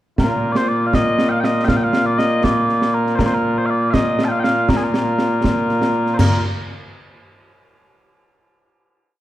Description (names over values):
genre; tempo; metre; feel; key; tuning
scottish traditional, Scottish pipe music; 80 BPM (dotted quarters); 6/8; straight; Bb major; A4 = 438 Hz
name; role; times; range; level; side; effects
mellow small bagpipes; melody; 0.2-6.4 s; Bb2 to A5; -17 LUFS; equal; none
concert snare drum, concert bass drum, concert toms and clash cymbals; drums; 0.2-6.3 s; none; -20 LUFS; right 1 dB; none
room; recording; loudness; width
moderate recital hall reverb, RT60 1.5 s; dark, warm production; -15 LUFS; side -14 dB against mid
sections
0.2-6.2 A section; 6.2-7.7 final note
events
none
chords
none